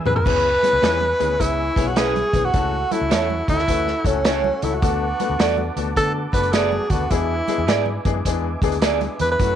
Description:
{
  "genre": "uptempo 1960s-style soul",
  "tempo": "105 BPM",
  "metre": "4/4",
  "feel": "swing 65% on 8ths",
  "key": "unclear",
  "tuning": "A4 = 440 Hz",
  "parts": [
    { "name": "mellow tonewheel organ", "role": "sustained chords", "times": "0.0-9.6 s", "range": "A3 to E6", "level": "-34 LUFS", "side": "right 1 dB", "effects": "chorus vibrato, wide subtle chorus" },
    { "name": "breathy tenor saxophone", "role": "melody", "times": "0.1-9.6 s", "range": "C#4 to B4", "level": "-21 LUFS", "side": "equal", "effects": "none" },
    { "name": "vibraphone with soft mallets", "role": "second line", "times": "0.1-9.6 s", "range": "C#5 to B5", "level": "-32 LUFS", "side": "right 11 dB", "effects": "none" },
    { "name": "warm upright piano", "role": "accompaniment", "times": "0.1-9.6 s", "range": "F#3 to C#5", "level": "-26 LUFS", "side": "left 11 dB", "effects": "none" },
    { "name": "vintage muted fingered electric bass", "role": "bass", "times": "0.1-9.6 s", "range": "F#1 to D3", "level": "-26 LUFS", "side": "equal", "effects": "none" },
    { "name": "vintage drum kit", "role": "drums", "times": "0.1-9.6 s", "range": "crash cymbal, hi-hat, kick drum, snare drum, toms", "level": "-23 LUFS", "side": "right 1 dB", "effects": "none" },
    { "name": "congas", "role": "percussion", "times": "0.1-9.3 s", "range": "none", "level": "-33 LUFS", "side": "right 9 dB", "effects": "none" },
    { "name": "electric guitar at the edge of break-up", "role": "stabs", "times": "0.8-9.0 s", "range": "C#4 to D5", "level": "-26 LUFS", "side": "right 12 dB", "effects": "none" }
  ],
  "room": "moderate spring reverb, RT60 1.4 s, studio reverb",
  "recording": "1960s-style stereo with parts hard left and right",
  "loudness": "-17 LUFS",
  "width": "side -10 dB against mid",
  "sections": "0.3-9.6 A section",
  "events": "drum fill 0.0",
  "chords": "0.3 C#m7; 2.5 F#m7/C#; 4.8 Bm7/D; 7.1 E7"
}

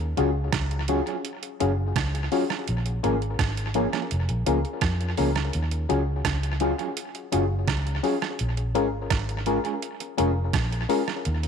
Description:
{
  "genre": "lovers rock reggae",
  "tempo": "84 BPM",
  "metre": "4/4",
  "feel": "straight",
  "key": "Eb minor",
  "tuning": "A4 = 441 Hz",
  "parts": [
    { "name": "vintage muted fingered electric bass", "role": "bass", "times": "0.0-11.5 s", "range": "F1 to F2", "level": "-26 LUFS", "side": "equal", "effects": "none" },
    { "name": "FM electric piano with tremolo", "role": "accompaniment", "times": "0.2-11.0 s", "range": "Db4 to Bb4", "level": "-28 LUFS", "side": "left 12 dB", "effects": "tape echo" },
    { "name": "mellow electric guitar", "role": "stabs", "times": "0.2-11.1 s", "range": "F3 to Ab4", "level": "-31 LUFS", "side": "right 11 dB", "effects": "none" },
    { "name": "crisp 8-bit digital drum machine", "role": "drums", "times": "0.2-11.5 s", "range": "hi-hat, kick drum, rim click", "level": "-29 LUFS", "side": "right 5 dB", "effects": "overdrive, tape echo" }
  ],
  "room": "light reverb",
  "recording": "1960s-style stereo with parts hard left and right",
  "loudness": "-23 LUFS",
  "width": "side -6 dB against mid",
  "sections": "0.0-11.5 A section",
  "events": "none",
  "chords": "0.0 Ebm11 (rootless); 2.7 Bbm7; 5.5 Ebm11 (rootless); 8.4 Bbm7"
}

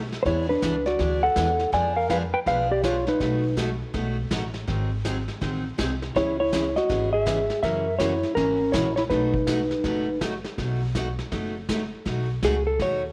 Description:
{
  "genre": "country, western swing",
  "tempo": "163 BPM",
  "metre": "4/4",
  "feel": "swing 63% on 8ths",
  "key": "B mixolydian",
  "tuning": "A4 = 439 Hz",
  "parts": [
    { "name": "upright bass", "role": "bass", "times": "0.0-13.1 s", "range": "F#1 to F#2", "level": "-32 LUFS", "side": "equal", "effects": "none" },
    { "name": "vintage brush drum kit", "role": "drums", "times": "0.1-13.1 s", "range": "brushed snare drum, hi-hat, kick drum, snare drum", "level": "-35 LUFS", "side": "equal", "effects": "none" },
    { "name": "clean lap steel guitar", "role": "melody", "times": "0.2-3.6, 6.2-10.2, 12.4-13.0 s", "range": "C#4 to Ab5", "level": "-25 LUFS", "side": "equal", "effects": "none" },
    { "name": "picked steel-string acoustic guitar", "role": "accompaniment", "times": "0.3-13.0 s", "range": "B2 to G#4", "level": "-33 LUFS", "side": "equal", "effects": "none" }
  ],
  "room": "moderate echo chamber reverb, RT60 2.0 s",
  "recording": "none",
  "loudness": "-25 LUFS",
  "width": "mono",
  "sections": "0.0-12.1 A section; 12.1-13.1 B section",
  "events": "electric slide guitar solo 12.1-13.1",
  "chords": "0.3 E7; 1.7 Fdim7; 3.2 B7; 4.7 G#7b9; 6.2 C#m7; 7.6 F#7; 9.1 B7"
}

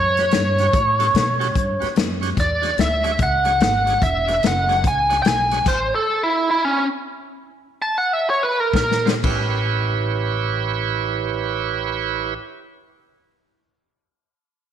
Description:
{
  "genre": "electric blues shuffle",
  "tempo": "117-146 BPM",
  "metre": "4/4",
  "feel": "swing 63% on 8ths",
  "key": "A mixolydian",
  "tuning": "A4 = 437 Hz",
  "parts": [
    { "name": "biting lead guitar", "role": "melody", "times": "0.0-9.1 s", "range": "C#4 to A5", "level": "-19 LUFS", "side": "right 1 dB", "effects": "overdrive, slapback echo" },
    { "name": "upright bass", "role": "bass", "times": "0.0-5.9, 8.7-12.3 s", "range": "E1 to B2", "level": "-25 LUFS", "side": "equal", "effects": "none" },
    { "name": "bright tonewheel organ", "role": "accompaniment", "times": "0.2-5.6, 9.1-12.3 s", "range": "C#4 to D5", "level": "-26 LUFS", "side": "right 10 dB", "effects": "slow rotary speaker, overdrive" },
    { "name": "natural country drum kit", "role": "drums", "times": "0.2-5.8, 8.7-9.4 s", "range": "crash cymbal, hi-hat, kick drum, snare drum", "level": "-22 LUFS", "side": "left 3 dB", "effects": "none" }
  ],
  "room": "moderate echo chamber reverb, RT60 1.7 s, small room ambience",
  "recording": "1960s-style stereo, lossy compression artefacts",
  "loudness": "-17 LUFS",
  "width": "side -9 dB against mid",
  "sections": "0.0-9.2 A section; 9.2-13.3 B section",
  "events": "slowing down 5.7-9.2; stop 5.7-8.7; drum fill 8.7-9.2",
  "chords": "0.0 A13; 2.4 E13; 5.7 N.C.; 8.7 Bb9; 9.2 A9"
}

